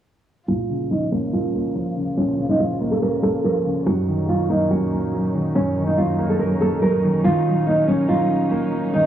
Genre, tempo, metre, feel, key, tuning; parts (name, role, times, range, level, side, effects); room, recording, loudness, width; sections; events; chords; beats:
hip hop; 142 BPM; 4/4; half-time; Bb minor; A4 = 441 Hz
nylon-string guitar; melody; 0.5-9.1 s; Db4 to Bb4; -21 LUFS; right 2 dB; low-pass filter, analog delay
dark concert grand piano; accompaniment; 0.5-9.1 s; Gb2 to Eb4; -22 LUFS; equal; low-pass filter
dark studio string section; sustained chords; 0.5-9.1 s; Bb2 to F4; -27 LUFS; right 1 dB; low-pass filter
little or no reverb; dry, gritty hardware recording, transformer saturation; -18 LUFS; side -10 dB against mid
0.5-9.1 A section
filter sweep 0.5-9.1
0.5 Bbm; 3.9 Gb6; 7.2 Ebm7
| 0.48 0.91 1.33 1.75 | 2.17 2.60 3.02 3.44 | 3.86 4.29 4.71 5.13 | 5.55 5.98 6.40 6.82 | 7.24 7.67 8.09 8.51 | 8.93